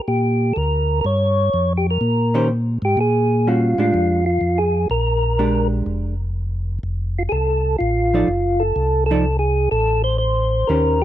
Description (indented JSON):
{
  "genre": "jazz",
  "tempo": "124 BPM",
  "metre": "4/4",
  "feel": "swing 69% on 8ths",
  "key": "unclear",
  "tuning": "A4 = 440 Hz",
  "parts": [
    { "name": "percussive tonewheel organ", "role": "melody", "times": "0.1-11.0 s", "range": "F4 to Db5", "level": "-19 LUFS", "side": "equal", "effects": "slow rotary speaker" },
    { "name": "mellow tonewheel organ", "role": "bass", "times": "0.1-11.0 s", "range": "F1 to Bb2", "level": "-20 LUFS", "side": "equal", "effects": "slow rotary speaker" },
    { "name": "vintage hollow-body jazz guitar", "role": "accompaniment", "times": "2.3-11.0 s", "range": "Eb3 to D5", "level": "-21 LUFS", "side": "right 2 dB", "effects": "none" }
  ],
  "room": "little or no reverb",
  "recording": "dry, close 1970s-style studio recording",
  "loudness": "-16 LUFS",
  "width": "side -12 dB against mid",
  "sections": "0.0-11.0 A section",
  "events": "none",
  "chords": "0.0 Eb9 (rootless); 3.0 Bb6; 6.8 F"
}